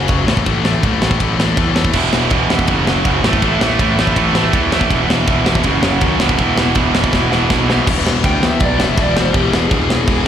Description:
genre	punk rock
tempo	162 BPM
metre	4/4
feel	straight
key	unclear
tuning	A4 = 440 Hz
part	tight distorted guitar	riff	0.0-10.3 s	E2 to A3	-19 LUFS	left 10 dB	distortion, slapback echo
part	fuzz picked electric bass	bass	0.0-10.3 s	E1 to E2	-18 LUFS	equal	overdrive
part	tight metal drum kit	drums	0.1-10.2 s	crash cymbal, kick drum, ride cymbal, snare drum	-17 LUFS	equal	none
part	distorted electric guitar	riff	1.9-7.9 s	E2 to A3	-17 LUFS	right 12 dB	overdrive
part	bluesy overdriven lead guitar	melody	8.3-10.3 s	G4 to G5	-20 LUFS	equal	distortion, slapback echo
room	studio ambience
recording	live gig heard through the venue's PA, recital hall reverb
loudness	-12 LUFS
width	side -9 dB against mid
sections	0.0-7.9 A section; 7.9-10.3 B section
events	drum fill 7.1-7.9; lead electric guitar solo 7.9-10.3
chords	0.3 A5; 1.9 E5; 2.7 F#5; 3.2 A5; 4.9 E5; 5.6 F#5; 6.2 E5; 7.9 E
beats	0.08 | 0.46 0.82 1.20 1.57 | 1.94 2.31 2.68 3.05 | 3.42 3.79 4.16 4.53 | 4.90 5.27 5.64 6.01 | 6.38 6.75 7.12 7.50 | 7.87 8.23 8.60 8.97 | 9.34 9.71 10.08

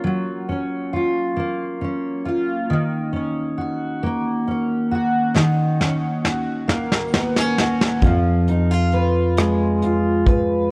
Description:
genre	six-eight pop ballad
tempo	45 BPM (dotted quarters)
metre	6/8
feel	straight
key	Eb minor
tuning	A4 = 441 Hz
part	fingerpicked steel-string acoustic guitar	accompaniment	0.0-10.7 s	Eb3 to Cb5	-22 LUFS	equal	double-tracked
part	soft brush drum kit	drums	5.4-10.5 s	hi-hat, kick drum, rim click, snare drum	-22 LUFS	equal	none
part	sustaining fretless electric bass	bass	8.0-10.7 s	F2	-22 LUFS	equal	none
room	light reverb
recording	worn, warbling old tape, cassette tape, warbly pitch drift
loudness	-21 LUFS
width	mono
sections	0.0-10.7 A section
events	drum fill 5.4-8.0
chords	0.0 Gbmaj7; 2.7 Ebm7; 8.0 Fdim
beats	| 0.03 1.36 | 2.69 4.02 | 5.35 6.69 | 8.04 9.38

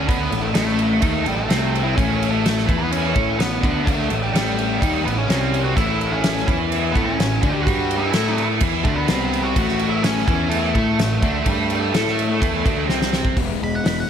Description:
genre	quiet-loud alternative rock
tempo	126 BPM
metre	4/4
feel	straight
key	unclear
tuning	A4 = 440 Hz
part	octave-fuzz lead guitar	melody	0.0-14.1 s	G3 to B5	-25 LUFS	equal	distortion, slapback echo
part	overdriven semi-hollow guitar	riff	0.0-14.1 s	A2 to A4	-25 LUFS	left 9 dB	none
part	tight distorted guitar	riff	0.0-13.4 s	A2 to A4	-26 LUFS	right 10 dB	distortion, slapback echo
part	fuzz picked electric bass	bass	0.0-14.0 s	E1 to A2	-24 LUFS	equal	overdrive
part	loose indie drum kit	drums	0.1-14.0 s	crash cymbal, hi-hat, kick drum, snare drum	-22 LUFS	right 1 dB	none
part	electric guitar through a small old amp	arpeggios	13.4-14.1 s	E2 to G#3	-28 LUFS	right 1 dB	tremolo
room	light reverb, small room reverb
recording	none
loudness	-17 LUFS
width	side -8 dB against mid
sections	0.0-13.4 A section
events	drum fill 12.9-13.4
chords	0.0 A; 13.4 E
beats	| 0.07 0.54 1.02 1.49 | 1.97 2.44 2.92 3.39 | 3.87 4.34 4.82 5.29 | 5.77 6.24 6.71 7.19 | 7.67 8.14 8.62 9.09 | 9.56 10.04 10.52 10.99 | 11.47 11.94 12.42 12.90 | 13.37 13.85

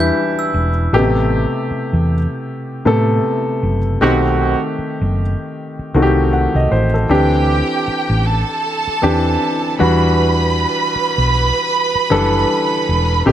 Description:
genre	soul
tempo	78 BPM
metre	4/4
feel	swing 58% on 16ths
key	E minor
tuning	A4 = 440 Hz
part	warm grand piano	accompaniment	0.0-13.3 s	B2 to F#5	-17 LUFS	left 1 dB	none
part	hollow-body short-scale fingered electric bass	bass	0.0-13.3 s	E1 to A2	-16 LUFS	equal	none
part	glockenspiel with brass mallets	texture	0.0-0.9 s	E6 to G6	-25 LUFS	right 4 dB	none
part	warm horn section	stabs	4.0-4.6 s	D#3 to F#4	-19 LUFS	right 5 dB	none
part	warm studio violin section	second line	7.1-13.3 s	G4 to C6	-18 LUFS	right 4 dB	none
room	light reverb, small room ambience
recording	none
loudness	-14 LUFS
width	side -11 dB against mid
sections	0.0-13.3 A section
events	band accent 4.0-7.1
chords	0.0 Em9; 0.9 Am9; 4.0 B7b9b13; 7.1 D9sus4; 9.8 Em9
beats	0.16 | 0.93 1.70 2.48 3.25 | 4.02 4.79 5.56 6.33 | 7.10 7.87 8.64 9.41 | 10.18 10.95 11.72 12.49 | 13.26

